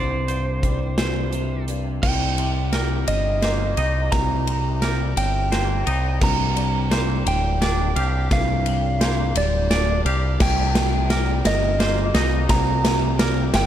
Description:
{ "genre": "post-rock", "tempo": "57 BPM (dotted quarters)", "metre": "6/8", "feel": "straight", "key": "C minor", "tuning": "A4 = 438 Hz", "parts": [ { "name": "electric slide guitar", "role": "melody", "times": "0.0-13.7 s", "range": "C5 to Bb5", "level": "-26 LUFS", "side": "right 3 dB", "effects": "tape echo" }, { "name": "twangy electric guitar", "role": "arpeggios", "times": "0.0-13.7 s", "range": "C2 to G4", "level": "-29 LUFS", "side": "left 4 dB", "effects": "ensemble chorus, tape echo" }, { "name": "twangy electric guitar", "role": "arpeggios", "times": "0.0-13.7 s", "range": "Bb4 to F5", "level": "-32 LUFS", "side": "right 4 dB", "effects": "spring reverb, tape echo" }, { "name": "growling picked electric bass", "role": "bass", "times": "0.0-13.7 s", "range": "D1 to C2", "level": "-22 LUFS", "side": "equal", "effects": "overdrive" }, { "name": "big rock drum kit", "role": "drums", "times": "0.3-13.7 s", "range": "crash cymbal, hi-hat, kick drum, ride cymbal, snare drum", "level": "-24 LUFS", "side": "equal", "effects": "none" } ], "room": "studio reverb", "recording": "dark, warm production", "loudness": "-18 LUFS", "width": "side -10 dB against mid", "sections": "0.0-2.0 A section; 2.0-13.7 B section", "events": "build-up 2.0-13.7; drum fill 2.0-13.7", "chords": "0.0 Csus2; 2.0 Cm7; 6.2 Gm7; 10.4 Cm7" }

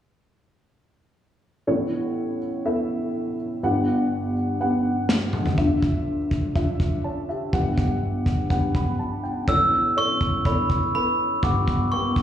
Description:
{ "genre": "piano-driven pop", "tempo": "123 BPM", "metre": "4/4", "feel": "straight", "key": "A mixolydian", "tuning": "A4 = 441 Hz", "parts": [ { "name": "dark upright piano", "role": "accompaniment", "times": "1.7-12.2 s", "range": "G1 to B5", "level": "-24 LUFS", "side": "equal", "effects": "slapback echo" }, { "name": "modern studio drum kit", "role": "drums", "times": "5.1-12.2 s", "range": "kick drum, snare drum, toms", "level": "-24 LUFS", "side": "equal", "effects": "none" }, { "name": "glockenspiel with hard plastic mallets", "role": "melody", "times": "9.5-12.2 s", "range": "B5 to E6", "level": "-21 LUFS", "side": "right 1 dB", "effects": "slapback echo" } ], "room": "moderate plate reverb, RT60 1.4 s, small room ambience", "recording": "live gig heard through the venue's PA, club reverb", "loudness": "-21 LUFS", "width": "side -10 dB against mid", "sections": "1.7-9.5 A section; 9.5-12.2 B section", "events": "drum fill 5.1-5.6; upright piano fill 8.5-9.5", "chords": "1.7 Aadd9; 3.6 Gmaj7; 5.6 Dmadd9; 7.5 Gmaj7; 9.5 Aadd9; 11.4 Gmaj7" }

